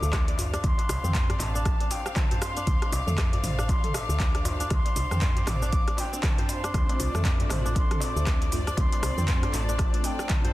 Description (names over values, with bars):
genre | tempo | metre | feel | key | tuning
afro house | 118 BPM | 4/4 | swing 59% on 16ths | D minor | A4 = 440 Hz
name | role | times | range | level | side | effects
mellow concert flute | melody | 0.0-10.5 s | G5 to D6 | -34 LUFS | left 1 dB | digital delay
dark studio string section | sustained chords | 0.0-10.5 s | D4 to F5 | -38 LUFS | equal | sidechain pumping
kora | arpeggios | 0.0-10.5 s | A3 to D5 | -37 LUFS | left 1 dB | sidechain pumping, digital delay
woody FM bass | bass | 0.0-10.1 s | A1 to F2 | -29 LUFS | equal | sidechain pumping
deep house drum kit | drums | 0.0-10.5 s | cabasa, handclaps, hi-hat, rim click, toms | -32 LUFS | equal | overdrive, studio reverb
electronic kick drum | drums | 0.1-10.4 s | none | -26 LUFS | equal | overdrive, studio reverb
darbuka | percussion | 0.1-10.5 s | none | -36 LUFS | equal | none
mellow synth brass | stabs | 6.7-10.5 s | A3 to C5 | -35 LUFS | left 1 dB | chorus, sidechain pumping, digital delay
room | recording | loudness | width
small room ambience | dense, heavily limited modern master | -23 LUFS | side -16 dB against mid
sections
0.0-10.5 A section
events
none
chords
0.0 Dm7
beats
0.13 | 0.64 1.15 1.66 2.17 | 2.67 3.18 3.69 4.20 | 4.71 5.22 5.72 6.23 | 6.74 7.25 7.76 8.27 | 8.78 9.28 9.79 10.30